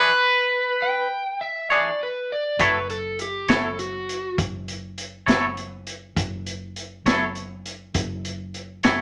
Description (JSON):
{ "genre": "slow blues", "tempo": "67 BPM (dotted quarters)", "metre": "12/8", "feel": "straight", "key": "unclear", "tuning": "A4 = 442 Hz", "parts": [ { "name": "overdriven electric guitar", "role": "melody", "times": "0.0-1.1 s", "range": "B4", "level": "-20 LUFS", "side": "equal", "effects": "none" }, { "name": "twangy electric guitar", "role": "accompaniment", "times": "0.0-9.0 s", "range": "E3 to C#5", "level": "-24 LUFS", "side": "equal", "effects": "harmonic tremolo" }, { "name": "overdriven slide guitar", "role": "second line", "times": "0.8-4.4 s", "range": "F#4 to G5", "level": "-29 LUFS", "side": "equal", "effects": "none" }, { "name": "vintage muted fingered electric bass", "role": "bass", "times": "2.6-9.0 s", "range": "F#1", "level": "-36 LUFS", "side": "equal", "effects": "none" }, { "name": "vintage drum kit", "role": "drums", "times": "2.6-9.0 s", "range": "hi-hat, kick drum, snare drum", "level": "-27 LUFS", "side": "equal", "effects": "none" } ], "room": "wet studio reverb, RT60 0.6 s", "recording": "none", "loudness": "-24 LUFS", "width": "mono", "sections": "0.0-9.0 A section", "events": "none", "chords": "0.0 E13; 2.6 F#m7" }